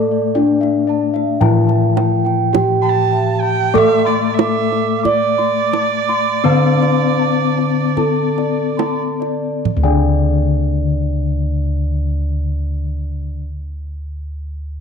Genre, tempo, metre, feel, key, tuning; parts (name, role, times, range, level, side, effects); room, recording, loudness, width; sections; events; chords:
Javanese gamelan; 34-60 BPM; 4/4; straight; D slendro; A4 = 439 Hz
gamelan-type bronze metallophone; melody; 0.0-13.4 s; D4 to D5; -20 LUFS; equal; slapback echo
gamelan-type bronze metallophone; accompaniment; 0.0-13.4 s; D3 to C4-40c; -20 LUFS; left 10 dB
gamelan-type bossed gongs; arpeggios; 0.0-13.4 s; D5 to D6; -25 LUFS; left 9 dB
gamelan-type bronze metallophone; arpeggios; 0.0-13.4 s; D5 to D6; -25 LUFS; right 11 dB; slapback echo
gamelan-type bossed gongs; bass; 0.0-13.4 s; D2 to A4+20c; -19 LUFS; equal
kendang; percussion; 0.6-10.5 s; -21 LUFS; right 9 dB
rich erhu; second line; 2.8-9.0 s; D5 to C6-36c; -21 LUFS; right 11 dB
moderate echo chamber reverb, RT60 2.1 s; 1960s-style stereo with parts hard left and right; -14 LUFS; side -6 dB against mid
0.0-9.7 A section; 9.7-14.8 B section
slowing down 0.0-9.7